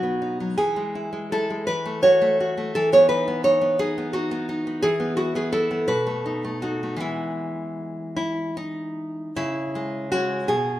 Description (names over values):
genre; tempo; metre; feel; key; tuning
romantic piece for solo classical guitar; 49-59 BPM (dotted quarters); 6/8; rubato; E major; A4 = 439 Hz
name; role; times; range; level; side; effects
nylon-string guitar; solo; 0.0-10.8 s; B2 to C#5; -21 LUFS; equal; none
room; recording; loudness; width
moderate recital hall reverb, RT60 1.4 s; minimal, uncompressed stereo recording, lossy compression artefacts; -21 LUFS; side -14 dB against mid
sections
0.0-9.4 A section; 9.4-10.8 B section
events
none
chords
0.0 B; 0.6 E; 1.7 F#m7/E; 2.7 B/E; 4.8 E5; 5.9 B7; 7.0 E; 9.4 C#m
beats
| 0.57 1.68 | 2.75 3.81 | 4.84 5.90 | 7.03 8.18 | 9.37 10.50